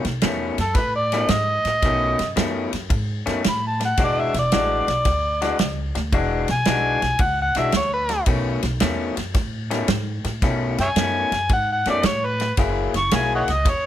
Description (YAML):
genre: electric blues shuffle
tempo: 112 BPM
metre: 4/4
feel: swing 67% on 8ths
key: unclear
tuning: A4 = 442 Hz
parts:
  - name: electric guitar through a small old amp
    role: riff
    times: 0.0-13.7 s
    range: B2 to G#4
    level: -25 LUFS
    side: left 4 dB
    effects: none
  - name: upright bass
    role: bass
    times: 0.0-13.9 s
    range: E1 to A2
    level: -26 LUFS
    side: equal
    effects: none
  - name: natural country drum kit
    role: drums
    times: 0.0-13.8 s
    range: kick drum, ride cymbal, snare drum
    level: -24 LUFS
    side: right 1 dB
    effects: none
  - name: overdriven harmonica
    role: melody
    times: 0.6-13.9 s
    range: A4 to C#6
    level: -22 LUFS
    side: equal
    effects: none
room: light reverb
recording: none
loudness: -19 LUFS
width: side -12 dB against mid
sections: 0.0-13.9 A section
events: none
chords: 0.0 B9; 4.0 E9; 8.3 B9; 12.6 F#9